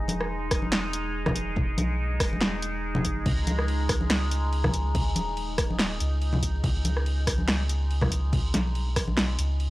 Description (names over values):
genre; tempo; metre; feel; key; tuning
deep dubstep; 142 BPM; 4/4; swing 55% on 16ths, half-time; unclear; A4 = 440 Hz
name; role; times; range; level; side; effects
overtone-sweeping drone; sustained chords; 0.0-9.7 s; G#3 to D#4; -34 LUFS; equal; chorus, built-in reverb
soft dub sub bass; bass; 0.0-9.7 s; D#1 to C#2; -28 LUFS; equal; none
deep house drum kit; drums; 0.1-9.7 s; crash cymbal, handclaps, hi-hat, rim click, snare drum; -29 LUFS; equal; overdrive
congas; percussion; 0.1-9.2 s; none; -31 LUFS; left 1 dB; none
electronic kick drum; drums; 0.5-9.1 s; none; -29 LUFS; equal; overdrive
room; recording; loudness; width
light reverb; dry, gritty hardware recording, transformer saturation, cassette tape; -24 LUFS; side -18 dB against mid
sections
0.0-9.7 A section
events
none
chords
0.0 E; 3.3 C#5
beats
0.30 0.72 1.15 | 1.57 1.99 2.41 2.83 | 3.26 3.68 4.10 4.53 | 4.95 5.37 5.79 6.22 | 6.64 7.06 7.48 7.91 | 8.33 8.75 9.17 9.60